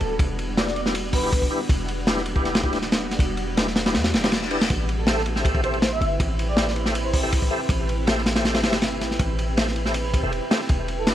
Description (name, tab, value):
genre	drum and bass, jungle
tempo	160 BPM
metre	4/4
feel	swing 54% on 16ths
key	A minor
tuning	A4 = 442 Hz
part	breathy flute-like synth lead	melody	0.0-1.4, 5.0-7.2, 11.0-11.1 s	A4 to E5	-30 LUFS	right 1 dB	ensemble chorus, dub echo
part	warm 808-style bass	bass	0.0-11.1 s	D1 to E2	-28 LUFS	equal	none
part	crunchy breakbeat drum kit	drums	0.0-11.1 s	hi-hat, kick drum, ride cymbal, snare drum	-22 LUFS	equal	none
part	tonewheel organ	stabs	0.6-11.1 s	D4 to E5	-29 LUFS	left 2 dB	chorus vibrato, stopped rotary speaker, dub echo
part	reverse cymbal	sound effects	4.1-4.7 s	none	-33 LUFS	left 5 dB	none
room	light reverb, small room ambience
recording	vinyl crackle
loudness	-20 LUFS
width	side -12 dB against mid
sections	0.0-11.1 A section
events	reverse cymbal 4.1-4.7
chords	0.0 Em7; 4.7 Am7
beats	| 0.20 0.57 0.95 1.32 | 1.70 2.07 2.45 2.82 | 3.20 3.57 3.95 4.32 | 4.70 5.07 5.45 5.82 | 6.20 6.57 6.95 7.32 | 7.70 8.07 8.45 8.82 | 9.20 9.57 9.95 10.32 | 10.70 11.07